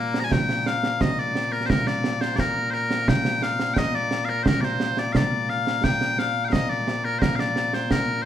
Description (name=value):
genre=scottish traditional, Scottish pipe music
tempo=87 BPM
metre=2/4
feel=straight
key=Bb major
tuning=A4 = 440 Hz
part: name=loud bright bagpipes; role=melody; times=0.0-8.3 s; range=Bb2 to Bb5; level=-24 LUFS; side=left 2 dB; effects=none
part: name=concert snare drum and concert bass drum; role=drums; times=0.1-8.1 s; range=none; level=-24 LUFS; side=right 2 dB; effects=none
room=wet large studio reverb, RT60 1.1 s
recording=band playing live in one room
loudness=-21 LUFS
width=side -10 dB against mid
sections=0.3-8.3 A section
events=none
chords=none